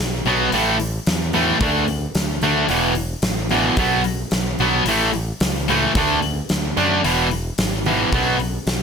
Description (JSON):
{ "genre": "hard rock", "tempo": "110 BPM", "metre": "4/4", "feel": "straight", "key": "B dorian", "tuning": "A4 = 442 Hz", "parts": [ { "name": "growling fingered electric bass", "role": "bass", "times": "0.0-8.8 s", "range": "E1 to F#2", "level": "-24 LUFS", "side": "equal", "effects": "overdrive" }, { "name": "distorted electric guitar", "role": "riff", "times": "0.3-8.4 s", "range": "E2 to D4", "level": "-21 LUFS", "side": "right 12 dB", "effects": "overdrive" }, { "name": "high-gain distorted guitar", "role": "riff", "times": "0.3-8.4 s", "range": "E2 to D4", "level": "-21 LUFS", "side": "left 11 dB", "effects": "distortion" }, { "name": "huge arena drum kit", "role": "drums", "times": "0.3-8.8 s", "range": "hi-hat, kick drum, snare drum", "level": "-23 LUFS", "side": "equal", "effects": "none" } ], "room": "light reverb, studio ambience", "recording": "none", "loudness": "-17 LUFS", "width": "side -6 dB against mid", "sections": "0.0-8.8 A section", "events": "none", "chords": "0.0 B5; 0.5 A5; 1.6 D5; 2.7 E5; 3.8 B5; 4.9 A; 6.0 D; 7.0 E; 8.1 B5" }